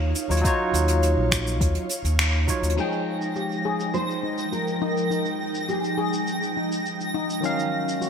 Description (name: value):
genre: sunset chillout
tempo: 103 BPM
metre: 4/4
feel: straight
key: F minor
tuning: A4 = 438 Hz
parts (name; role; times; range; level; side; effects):
- nylon-string guitar; melody; 0.0-7.1 s; F4 to C5; -32 LUFS; equal; ensemble chorus, digital delay, shimmer reverb
- ethereal airy pad; sustained chords; 0.0-8.1 s; Eb3 to G5; -29 LUFS; right 1 dB; ensemble chorus, built-in reverb, shimmer reverb
- overdriven fingered electric bass; bass; 0.0-2.7 s; Bb1 to Eb2; -23 LUFS; equal; none
- soft brush drum kit; drums; 0.1-8.1 s; crash cymbal, finger snaps, hi-hat, shaker; -29 LUFS; equal; low-pass filter on hats, low-pass filter on cymbals, low-pass filter on perc, low-pass filter on snare, low-pass filter on room
- barky tine electric piano; accompaniment; 0.3-8.1 s; Eb3 to G5; -28 LUFS; equal; medium stereo tremolo, auto-pan, digital delay, shimmer reverb
- electronic kick drum; drums; 0.4-2.6 s; none; -26 LUFS; equal; none
- steel pan; arpeggios; 2.8-8.1 s; Eb4 to Ab4; -31 LUFS; left 6 dB; low-pass filter, digital delay, shimmer reverb
- twinkling granular texture; texture; 3.1-8.1 s; Bb6; -32 LUFS; equal; built-in reverb, analog chorus, shimmer reverb
room: wet plate reverb, RT60 1.6 s, small room ambience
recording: bright 1980s-style digital production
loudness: -22 LUFS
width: side -7 dB against mid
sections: 0.0-2.8 A section; 2.8-8.1 B section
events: band accent 2.2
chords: 0.0 Ebm9; 2.8 Fm9; 7.4 Ebm9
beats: | 0.44 1.03 1.61 2.19 | 2.77 3.36 3.94 4.52 | 5.10 5.69 6.27 6.85 | 7.43 8.02